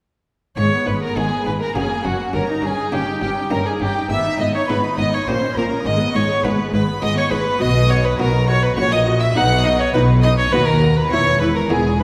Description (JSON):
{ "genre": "classical, baroque-style concerto movement with solo episodes", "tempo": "102 BPM", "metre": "3/4", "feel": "straight", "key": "G# minor, B major from 7.6 s", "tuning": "A4 = 441 Hz", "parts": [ { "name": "rich chamber violin section", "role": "melody", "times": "0.6-12.0 s", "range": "F#5 to F#6", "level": "-30 LUFS", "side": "equal", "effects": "none" }, { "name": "rich violin", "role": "melody", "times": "0.6-12.0 s", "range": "F#4 to F#5", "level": "-24 LUFS", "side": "equal", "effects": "none" }, { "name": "warm chamber violin section", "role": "second line", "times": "0.6-12.0 s", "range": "F#4 to F#5", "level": "-26 LUFS", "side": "equal", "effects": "none" }, { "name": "buff-stop harpsichord", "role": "accompaniment", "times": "0.6-12.0 s", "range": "D#2 to G#4", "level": "-29 LUFS", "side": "equal", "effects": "none" }, { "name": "warm chamber viola section", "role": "accompaniment", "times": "0.6-12.0 s", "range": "G#3 to F#4", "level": "-28 LUFS", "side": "equal", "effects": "none" }, { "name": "rich chamber double bass section", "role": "bass", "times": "0.6-12.0 s", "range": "E1 to D#2", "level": "-24 LUFS", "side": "equal", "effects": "none" }, { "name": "warm chamber cello section", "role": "bass", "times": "0.6-12.0 s", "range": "D#2 to B2", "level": "-26 LUFS", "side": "equal", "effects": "none" } ], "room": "wet concert hall reverb, RT60 1.9 s", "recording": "heard from further back in the room", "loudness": "-18 LUFS", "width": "mono", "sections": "0.6-12.0 A section", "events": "none", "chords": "0.6 G#m; 1.8 F#; 2.3 D#7/G; 4.1 G#m; 5.3 Gdim/Bb; 5.9 G#m; 7.6 B; 8.8 F#/A#; 9.4 B; 10.5 B/D#; 11.1 E", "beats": "| 0.58 1.17 1.76 | 2.34 2.93 3.52 | 4.10 4.69 5.28 | 5.86 6.45 7.03 | 7.61 8.19 8.78 | 9.36 9.94 10.53 | 11.11 11.70" }